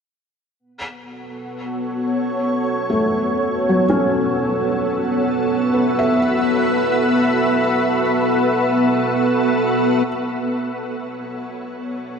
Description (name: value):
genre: ambient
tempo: free time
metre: none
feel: none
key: unclear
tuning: A4 = 441 Hz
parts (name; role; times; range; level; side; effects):
- soft additive organ-like pad; sustained chords; 1.3-12.2 s; B3 to E5; -17 LUFS; equal; ensemble chorus, built-in reverb
- felt-muted upright piano; arpeggios; 2.9-10.1 s; F#3 to E5; -23 LUFS; left 1 dB; tape echo
room: wet huge ambient reverb, RT60 8.0 s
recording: none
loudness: -16 LUFS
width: side -6 dB against mid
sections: 0.6-10.1 A section; 10.1-12.2 A section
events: fade-out on felt piano 0.6-10.1; filter sweep on ambient pad 0.6-10.1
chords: 0.6 B5; 10.1 Bm7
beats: free time